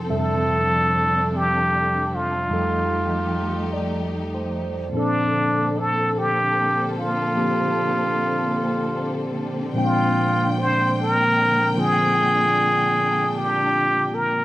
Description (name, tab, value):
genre	jazz ballad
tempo	50 BPM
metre	4/4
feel	swing 66% on 8ths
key	F major, Bb major from 4.9 s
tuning	A4 = 440 Hz
part	barky tine electric piano	accompaniment	0.0-14.4 s	F2 to G5	-24 LUFS	equal	phaser
part	warm symphonic string section	sustained chords	0.0-14.4 s	D3 to G5	-27 LUFS	left 1 dB	none
part	trumpet with plunger mute	melody	0.2-14.4 s	D4 to C5	-20 LUFS	equal	slapback echo
room	little or no reverb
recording	recorded outdoors, with no room sound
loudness	-19 LUFS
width	side -16 dB against mid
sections	0.0-4.9 A section; 4.9-14.4 B section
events	none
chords	0.0 Fmaj7; 2.5 F9; 4.9 Bbmaj9; 9.8 Bb13